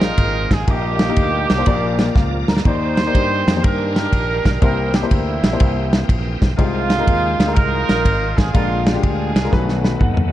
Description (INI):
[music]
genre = uptempo gospel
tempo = 122 BPM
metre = 4/4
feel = swing 66% on 8ths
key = Eb major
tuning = A4 = 441 Hz
[part]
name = warm horn section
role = melody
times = 0.0-10.0 s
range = G3 to C5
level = -22 LUFS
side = right 4 dB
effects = none
[part]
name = warm upright piano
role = accompaniment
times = 0.0-10.3 s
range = Bb2 to B5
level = -23 LUFS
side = left 5 dB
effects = none
[part]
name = bright tonewheel organ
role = sustained chords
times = 0.0-10.3 s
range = D3 to D5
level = -29 LUFS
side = right 1 dB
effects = slow rotary speaker, overdrive, chorus vibrato
[part]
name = fingered electric bass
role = bass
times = 0.0-10.3 s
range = Ab1 to G2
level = -22 LUFS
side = equal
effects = none
[part]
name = warm soul drum kit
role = drums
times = 0.0-10.3 s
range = kick drum, ride cymbal, snare drum, toms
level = -18 LUFS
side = equal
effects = none
[sound]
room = small room ambience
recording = dark, warm production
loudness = -15 LUFS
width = side -13 dB against mid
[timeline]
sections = 0.0-10.3 A section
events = upright piano fill 1.9-2.7, 9.5-10.3; drum fill 2.2-2.7, 9.5-10.3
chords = 0.0 Bb9sus4; 0.7 Eb/Bb; 1.7 Bb; 2.7 Ebmaj7; 4.6 C7; 6.6 Fm7/C; 8.5 Bb7; 9.5 B7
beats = 0.19 | 0.68 1.17 1.67 2.16 | 2.65 3.14 3.64 4.13 | 4.62 5.11 5.60 6.09 | 6.58 7.07 7.57 8.05 | 8.55 9.04 9.53 10.02